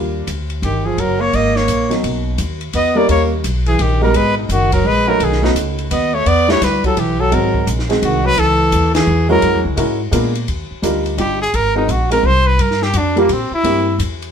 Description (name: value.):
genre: jazz, small-group swing and bop.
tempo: 170 BPM.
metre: 3/4.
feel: swing 64% on 8ths.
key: B major, Eb major from 10.5 s.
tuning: A4 = 440 Hz.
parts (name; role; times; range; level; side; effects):
warm upright piano; accompaniment; 0.0-13.9 s; Cb3 to B4; -18 LUFS; right 1 dB; none.
upright bass; bass; 0.0-14.3 s; Gb1 to A#2; -18 LUFS; equal; none.
compact cocktail drum kit; drums; 0.3-14.3 s; hi-hat, kick drum, ride cymbal, snare drum; -26 LUFS; left 2 dB; none.
warm trumpet; melody; 0.6-14.0 s; Bb3 to Eb5; -17 LUFS; equal; none.
clear tenor saxophone; second line; 0.6-9.6 s; B2 to B3; -19 LUFS; right 1 dB; none.
room: moderate studio reverb, RT60 0.6 s.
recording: band playing live in one room.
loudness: -13 LUFS.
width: side -7 dB against mid.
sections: 0.0-2.0 A section; 2.0-10.5 B section; 10.5-14.3 C section.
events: band accent 8.9; trumpet solo 10.5-14.3.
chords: 0.0 Ebmaj9; 1.0 Gb; 2.0 Bmaj7; 3.1 D#7; 4.1 G#m7; 5.2 B7; 6.3 Em9; 7.3 G#7; 8.4 C#m; 9.4 F#7; 10.1 A#7b9; 10.5 Ebmaj9; 11.5 Ab9; 12.6 Gm7; 13.6 C9.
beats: 0.27 0.62 | 0.98 1.33 1.68 | 2.04 2.39 2.74 | 3.09 3.44 3.79 | 4.15 4.50 4.85 | 5.20 5.55 5.91 | 6.26 6.61 6.96 | 7.31 7.66 8.02 | 8.37 8.72 9.07 | 9.42 9.77 10.12 | 10.48 10.83 11.18 | 11.53 11.88 12.24 | 12.59 12.94 13.29 | 13.64 13.99.